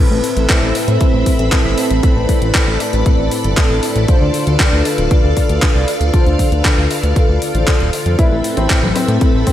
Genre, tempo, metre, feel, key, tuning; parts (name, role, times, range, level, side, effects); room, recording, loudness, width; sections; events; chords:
italo disco; 117 BPM; 4/4; straight; A minor; A4 = 439 Hz
string machine, full ensemble; sustained chords; 0.0-9.5 s; C4 to B5; -20 LUFS; right 1 dB; ensemble chorus
mellow synth brass; stabs; 0.0-9.5 s; A2 to D5; -20 LUFS; left 2 dB; chorus, diffuse ambient delay
fat analog bass; bass; 0.1-9.4 s; D1 to A2; -17 LUFS; equal
gated 80s digital drum machine; drums; 0.2-9.5 s; congas, handclaps, hi-hat; -20 LUFS; equal; gated reverb, overdrive
electronic kick drum; drums; 0.5-9.5 s; -14 LUFS; equal
warm baby grand piano; melody; 8.2-9.5 s; C4 to E4; -20 LUFS; left 2 dB; tape echo
moderate lush hall reverb, RT60 1.8 s; dreamy mix soaked in reverb; -12 LUFS; side -12 dB against mid
0.0-9.5 A section
0.0 Amadd9; 4.1 Dm7; 8.2 Amadd9